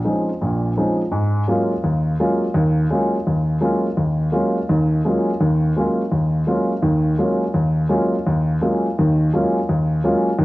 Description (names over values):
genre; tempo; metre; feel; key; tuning
jazz; 168 BPM; 4/4; swing 64% on 8ths; unclear; A4 = 440 Hz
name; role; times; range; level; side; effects
warm baby grand piano; solo; 0.0-10.4 s; Bb1 to E#4; -16 LUFS; equal; cassette tape
room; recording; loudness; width
moderate spring reverb, RT60 2.0 s; home recording on cassette; -17 LUFS; side -18 dB against mid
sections
0.0-1.1 A section; 1.1-10.4 B section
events
none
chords
0.0 Eb13sus4; 1.1 G#13sus4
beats
0.04 0.40 0.76 | 1.11 1.47 1.83 2.19 | 2.54 2.90 3.26 3.62 | 3.97 4.33 4.69 5.04 | 5.40 5.76 6.12 6.47 | 6.83 7.19 7.54 7.90 | 8.26 8.61 8.97 9.32 | 9.68 10.04 10.39